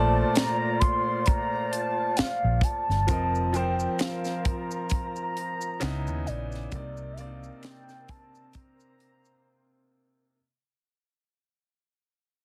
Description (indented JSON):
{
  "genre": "R&B, neo-soul",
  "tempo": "66 BPM",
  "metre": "4/4",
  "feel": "swing 56% on 16ths",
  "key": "unclear",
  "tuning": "A4 = 440 Hz",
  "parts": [
    { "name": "mellow horn-like synth lead", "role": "melody", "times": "0.0-9.9 s", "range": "D5 to C6", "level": "-32 LUFS", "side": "equal", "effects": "chorus, phaser" },
    { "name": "clear baby grand piano", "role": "accompaniment", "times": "0.0-10.4 s", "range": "Bb2 to Eb5", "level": "-34 LUFS", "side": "equal", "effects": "none" },
    { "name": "flute section", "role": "sustained chords", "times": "0.0-10.3 s", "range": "C4 to Ab5", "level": "-39 LUFS", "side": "equal", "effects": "none" },
    { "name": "vintage muted fingered electric bass", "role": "bass", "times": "0.0-7.5 s", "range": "F1 to Eb2", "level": "-31 LUFS", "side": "equal", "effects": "none" },
    { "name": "tight funk drum kit", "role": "drums", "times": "0.4-9.2 s", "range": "hi-hat, kick drum, snare drum", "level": "-29 LUFS", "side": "equal", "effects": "none" },
    { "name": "maracas and finger snaps", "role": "percussion", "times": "3.1-9.4 s", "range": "none", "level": "-44 LUFS", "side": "equal", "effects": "none" }
  ],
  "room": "light reverb",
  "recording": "heavily compressed radio sound",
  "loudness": "-27 LUFS",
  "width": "mono",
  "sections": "0.0-10.4 A section",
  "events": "fade-out 0.0-10.4; break 9.4-10.4",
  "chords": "0.0 Bbmaj9; 3.1 F7sus4; 5.8 Dbm9; 6.7 Cm9",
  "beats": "0.36 1.27 2.18 | 3.09 4.00 4.90 5.81 | 6.72 7.63 8.54 9.45"
}